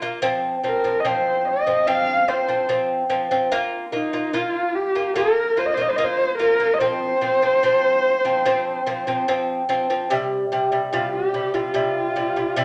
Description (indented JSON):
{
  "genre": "mongolian traditional, Mongolian folk",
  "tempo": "73 BPM",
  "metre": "4/4",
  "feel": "straight",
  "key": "unclear",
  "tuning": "A4 = 440 Hz",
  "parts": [
    { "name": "lute", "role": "arpeggios", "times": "0.0-12.6 s", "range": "C3 to F4", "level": "-25 LUFS", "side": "equal", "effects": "none" },
    { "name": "warm horsehead fiddle", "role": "melody", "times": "0.7-12.6 s", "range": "Eb4 to F5", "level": "-22 LUFS", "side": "equal", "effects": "none" }
  ],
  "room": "wet large studio reverb, RT60 0.9 s",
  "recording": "none",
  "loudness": "-21 LUFS",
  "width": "mono",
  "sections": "0.0-10.1 A section; 10.1-12.6 B section",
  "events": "none",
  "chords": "0.2 F5; 3.5 Bb5; 6.8 F5; 10.1 C5",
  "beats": "| 0.23 1.05 1.87 2.70 | 3.52 4.34 5.17 5.99 | 6.81 7.64 8.46 9.28 | 10.11 10.93 11.76 12.58"
}